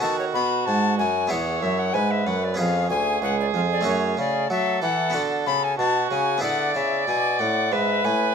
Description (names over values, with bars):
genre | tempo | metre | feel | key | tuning
classical, baroque-style sonata movement with continuo | 94 BPM | 4/4 | straight | unclear | A4 = 440 Hz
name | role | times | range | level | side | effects
bright tenor recorder | melody | 0.0-8.3 s | C#5 to B5 | -25 LUFS | left 8 dB | none
dark violin | second line | 0.0-8.3 s | F#4 to D5 | -26 LUFS | right 6 dB | none
harpsichord | accompaniment | 0.0-8.3 s | C#2 to A4 | -27 LUFS | right 1 dB | none
clear bassoon | bass | 0.0-8.3 s | C#2 to F#3 | -27 LUFS | right 2 dB | none
room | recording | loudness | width
light reverb | close, detailed microphones | -20 LUFS | side -6 dB against mid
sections
0.0-8.3 A section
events
none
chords
0.0 B7; 1.3 E; 2.6 C#7; 3.9 F#m; 5.1 Bm; 6.4 E7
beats
0.03 0.67 | 1.31 1.94 2.59 3.22 | 3.86 4.50 5.14 5.78 | 6.42 7.07 7.71